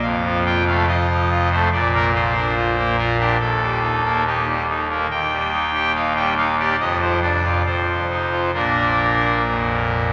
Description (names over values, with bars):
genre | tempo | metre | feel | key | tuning
classical, chorale-style piece for pipe organ | 71 BPM | 4/4 | rubato | Bb major | A4 = 440 Hz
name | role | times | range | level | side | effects
pipe organ, trumpet | solo | 0.0-10.1 s | Eb1 to G5 | -19 LUFS | equal | none
room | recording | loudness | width
wet cathedral reverb, RT60 5.0 s | none | -19 LUFS | mono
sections
0.0-10.1 A section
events
none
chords
0.0 F; 1.7 Bb; 3.4 Eb; 5.1 Ebadd9; 6.8 Dm7/F; 7.6 F5; 8.5 Bb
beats
0.02 0.88 | 1.72 2.56 3.40 4.26 | 5.11 5.95 6.79 7.65 | 8.54 9.44